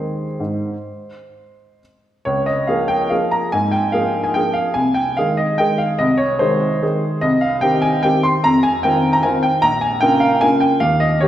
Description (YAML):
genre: classical, piano waltz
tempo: 124-157 BPM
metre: 3/4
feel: rubato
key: Ab major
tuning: A4 = 439 Hz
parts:
  - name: warm upright piano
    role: solo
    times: 0.0-11.3 s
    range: Bb1 to C6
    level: -15 LUFS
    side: equal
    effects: none
room: wet recital hall reverb, RT60 1.5 s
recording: recorded in a church or concert hall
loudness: -15 LUFS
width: side -12 dB against mid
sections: 0.0-2.3 A section; 2.3-11.3 B section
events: none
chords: 0.0 Ab; 2.3 Db6; 4.7 Ab/C; 7.2 Cm; 8.4 F5; 9.6 Bbm